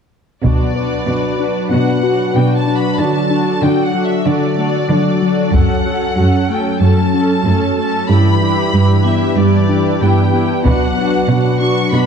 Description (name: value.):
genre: cinematic, hybrid orchestral and electronic film score.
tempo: 94 BPM.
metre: 4/4.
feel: straight.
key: B minor.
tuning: A4 = 440 Hz.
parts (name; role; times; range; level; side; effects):
warm symphonic violin section; melody; 0.4-12.1 s; D5 to C#6; -22 LUFS; left 2 dB; none.
warm symphonic viola section; accompaniment; 0.4-12.1 s; C#4 to A4; -22 LUFS; left 1 dB; none.
warm analog pad; sustained chords; 0.4-12.1 s; E3 to B4; -18 LUFS; right 1 dB; chorus.
harp-like synth pluck; arpeggios; 0.4-12.1 s; D3 to B4; -20 LUFS; left 6 dB; chorus.
warm symphonic cello section; bass; 0.4-12.1 s; F#2 to D3; -16 LUFS; right 2 dB; none.
taiko ensemble; drums; 0.4-1.7, 5.5-6.8, 10.7-11.9 s; none; -17 LUFS; equal; none.
room: wet scoring stage reverb, RT60 1.8 s.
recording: dark, warm production.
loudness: -12 LUFS.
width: side -6 dB against mid.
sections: 0.4-12.1 A section.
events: none.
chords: 0.4 Bm; 3.0 D; 5.5 F#m; 8.1 G6; 10.7 Bm.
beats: | 0.44 1.08 1.72 2.35 | 2.99 3.63 4.27 4.91 | 5.54 6.18 6.82 7.46 | 8.10 8.74 9.37 10.01 | 10.65 11.29 11.93.